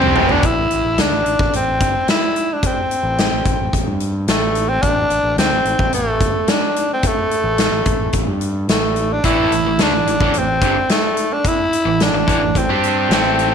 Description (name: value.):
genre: classic rock.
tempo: 109 BPM.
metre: 4/4.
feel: straight.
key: A minor.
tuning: A4 = 440 Hz.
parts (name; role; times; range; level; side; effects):
raspy tenor saxophone; melody; 0.0-13.5 s; A3 to E4; -18 LUFS; equal; none.
distorted electric guitar; riff; 0.0-0.4, 9.2-13.5 s; E2 to G4; -21 LUFS; right 12 dB; distortion.
overdriven electric guitar; riff; 0.0-0.4, 9.2-13.5 s; E2 to G4; -23 LUFS; left 11 dB; none.
growling fingered electric bass; bass; 0.0-13.5 s; E1 to G2; -23 LUFS; equal; overdrive.
huge arena drum kit; drums; 0.0-13.5 s; hi-hat, kick drum, snare drum, toms; -19 LUFS; equal; none.
room: moderate echo chamber reverb, RT60 1.4 s, small room reverb.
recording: 1960s-style stereo with parts hard left and right.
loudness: -14 LUFS.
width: side -7 dB against mid.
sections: 0.4-13.5 A section.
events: drum fill 0.0-0.4.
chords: 0.4 Am.